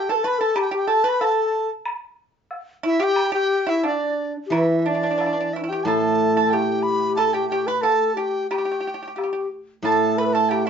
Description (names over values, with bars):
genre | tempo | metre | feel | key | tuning
chinese traditional, Chinese chamber ensemble | 91 BPM | 2/4 | rubato | unclear | A4 = 440 Hz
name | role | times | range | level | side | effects
breathy large dizi | melody | 0.0-10.7 s | D5 to B5 | -25 LUFS | right 2 dB | none
bright xiao | second line | 0.0-10.7 s | D4 to B4 | -23 LUFS | left 4 dB | none
pipa | second line | 0.0-10.7 s | D4 to B4 | -25 LUFS | right 6 dB | none
woodblock | percussion | 0.6-10.7 s | none | -32 LUFS | equal | none
steel-string zither | accompaniment | 4.5-7.8, 9.8-10.7 s | A2 to E3 | -24 LUFS | right 2 dB | none
room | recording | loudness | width
wet studio reverb, RT60 0.6 s | heard from further back in the room, nothing above 7.6 kHz | -19 LUFS | side -7 dB against mid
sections
0.0-4.5 A section; 4.5-10.7 B section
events
none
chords
none